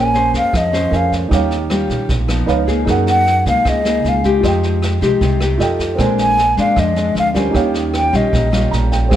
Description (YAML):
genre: bossa nova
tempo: 154 BPM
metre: 4/4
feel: straight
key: unclear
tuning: A4 = 442 Hz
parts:
  - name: breathy mellow silver concert flute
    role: melody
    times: 0.0-8.7 s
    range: Eb5 to Ab5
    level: -16 LUFS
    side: equal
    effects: plate reverb
  - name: nylon-string guitar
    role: accompaniment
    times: 0.0-9.2 s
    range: Bb2 to C5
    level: -19 LUFS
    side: left 3 dB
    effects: none
  - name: warm baby grand piano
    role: accompaniment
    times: 0.0-9.2 s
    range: C4 to Bb5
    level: -22 LUFS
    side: right 5 dB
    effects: none
  - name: upright bass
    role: bass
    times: 0.0-9.2 s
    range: Ab1 to Gb2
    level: -19 LUFS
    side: right 1 dB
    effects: none
  - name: vintage brush drum kit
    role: drums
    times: 0.1-9.2 s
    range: kick drum, rim click, snare drum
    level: -23 LUFS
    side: right 1 dB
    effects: none
room: moderate large studio reverb, RT60 1.1 s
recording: none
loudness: -13 LUFS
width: side -11 dB against mid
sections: 0.0-9.2 A section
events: flute solo 0.0-9.2; grand piano fill 8.5-9.1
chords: 0.0 Bbm9; 1.3 Eb9; 2.5 Db9; 2.9 Gb69; 4.4 Fm9; 5.6 F9; 6.0 Bb9; 7.5 Eb9